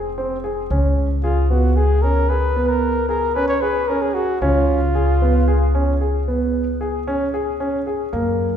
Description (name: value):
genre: contemporary instrumental, contemporary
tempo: 113 BPM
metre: 7/4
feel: straight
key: unclear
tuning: A4 = 440 Hz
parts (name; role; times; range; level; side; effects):
- dark baby grand piano; arpeggios; 0.0-8.5 s; A#3 to Ab4; -21 LUFS; right 1 dB; none
- upright bass; bass; 0.0-8.6 s; F1 to F#2; -20 LUFS; equal; none
- mellow flugelhorn; melody; 1.2-6.0 s; E#4 to C#5; -21 LUFS; equal; none
room: wet concert hall reverb, RT60 1.9 s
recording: recorded in a church or concert hall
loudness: -17 LUFS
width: side -9 dB against mid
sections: 0.0-8.6 A section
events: none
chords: 0.0 Fm; 0.7 C#